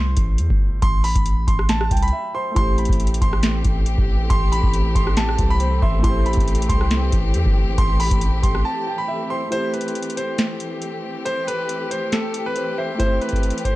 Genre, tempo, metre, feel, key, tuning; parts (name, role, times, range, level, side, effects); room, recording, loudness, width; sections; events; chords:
hip hop, trap; 138 BPM; 4/4; half-time; A minor; A4 = 442 Hz
bright concert grand piano; melody; 0.0-13.8 s; A4 to C6; -26 LUFS; right 1 dB; tape echo
warm concert grand piano; accompaniment; 0.0-13.8 s; A3 to G5; -30 LUFS; equal
long sustained 808-style bass; bass; 0.0-8.6 s; G1 to E2; -20 LUFS; equal
booming analog drum machine; drums; 0.2-13.8 s; hi-hat, kick drum, rim click, snare drum; -20 LUFS; equal
rich studio string section; sustained chords; 2.6-13.8 s; E3 to G4; -28 LUFS; left 2 dB
small room ambience; dark, warm production; -18 LUFS; side -17 dB against mid
0.0-9.5 A section; 9.5-13.8 B section
break 2.1-2.6, 8.6-9.5
0.0 Am7